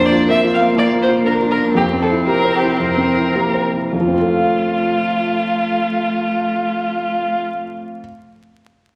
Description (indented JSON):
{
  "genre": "quick classical-period movement for piano quartet",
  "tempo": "101-127 BPM",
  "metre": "4/4",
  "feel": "straight",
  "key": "F major",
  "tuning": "A4 = 441 Hz",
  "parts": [
    { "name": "rich violin", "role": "melody", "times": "0.0-7.4 s", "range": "F4 to F5", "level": "-21 LUFS", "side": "equal", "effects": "none" },
    { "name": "rich cello", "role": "second line", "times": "0.0-7.4 s", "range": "A3 to D4", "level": "-24 LUFS", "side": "equal", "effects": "none" },
    { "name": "warm grand piano", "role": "accompaniment", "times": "0.0-8.0 s", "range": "F2 to F5", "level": "-21 LUFS", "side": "equal", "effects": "none" }
  ],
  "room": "wet scoring stage reverb, RT60 1.6 s",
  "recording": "vinyl crackle",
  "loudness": "-17 LUFS",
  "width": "mono",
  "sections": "0.0-3.9 A section; 3.9-8.6 B section",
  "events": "slowing down 0.0-3.9",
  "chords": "0.0 Bb/F; 1.8 C7/F; 3.9 F"
}